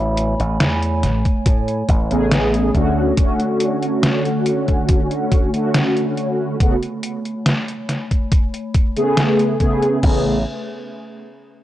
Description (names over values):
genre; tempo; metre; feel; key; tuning
vaporwave; 70 BPM; 4/4; straight; A major; A4 = 440 Hz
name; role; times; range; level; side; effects
warbly tape-like pad; sustained chords; 0.0-10.4 s; A3 to C#6; -26 LUFS; equal; chorus, built-in reverb, vintage 12-bit sampler grit
slap bass with an envelope filter; bass; 0.0-3.1, 10.0-10.4 s; A1 to A2; -20 LUFS; equal; none
detuned 8-bit digital drum machine; drums; 0.2-10.2 s; crash cymbal, hi-hat, snare drum; -21 LUFS; equal; overdrive, vintage 12-bit sampler grit
electronic kick drum; drums; 1.3-10.2 s; none; -16 LUFS; equal; overdrive, vintage 12-bit sampler grit
mellow synth brass; accompaniment; 2.1-10.4 s; C#3 to G#4; -18 LUFS; equal; ensemble chorus, analog delay
room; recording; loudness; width
light reverb, digital ambience; dry, gritty hardware recording, cassette tape, nothing above 10.4 kHz; -16 LUFS; side -13 dB against mid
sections
0.0-10.0 A section; 10.0-11.6 B section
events
filter sweep on ambient pad 0.0-10.0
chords
0.0 Amaj9; 2.7 Dmaj7; 6.6 Amaj9